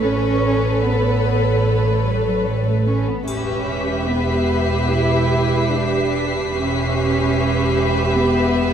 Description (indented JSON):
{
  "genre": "cinematic, suspense film score",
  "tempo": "74 BPM",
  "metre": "4/4",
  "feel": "straight",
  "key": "E dorian",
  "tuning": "A4 = 440 Hz",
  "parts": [
    { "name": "warm studio violin section", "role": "melody", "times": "0.0-8.7 s", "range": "C#5 to E5", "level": "-28 LUFS", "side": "left 4 dB", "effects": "none" },
    { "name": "clear studio violin section", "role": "second line", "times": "0.0-8.7 s", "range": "B4", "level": "-26 LUFS", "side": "left 1 dB", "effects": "none" },
    { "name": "warm studio viola section", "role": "accompaniment", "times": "0.0-8.7 s", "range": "G4 to A4", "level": "-23 LUFS", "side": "equal", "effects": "none" },
    { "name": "warm studio cello section", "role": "bass", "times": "0.0-8.7 s", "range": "F#3 to E4", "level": "-23 LUFS", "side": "right 2 dB", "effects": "none" },
    { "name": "warm studio double bass section", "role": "bass", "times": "0.0-8.7 s", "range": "E1 to A1", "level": "-21 LUFS", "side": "right 2 dB", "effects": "none" },
    { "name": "triangle", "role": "percussion", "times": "3.3-4.9 s", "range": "none", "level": "-39 LUFS", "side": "left 4 dB", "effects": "none" },
    { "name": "warm studio violin section", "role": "texture", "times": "3.3-8.7 s", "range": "B6 to C7", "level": "-30 LUFS", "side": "left 3 dB", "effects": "none" }
  ],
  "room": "moderate scoring stage reverb, RT60 2.1 s",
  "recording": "dark, warm production",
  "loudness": "-16 LUFS",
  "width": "side -8 dB against mid",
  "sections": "0.0-8.7 A section",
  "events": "none",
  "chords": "0.0 Aadd9; 3.3 Em",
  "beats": "| 0.03 0.84 1.65 2.46 | 3.27 4.08 4.89 5.70 | 6.51 7.33 8.14"
}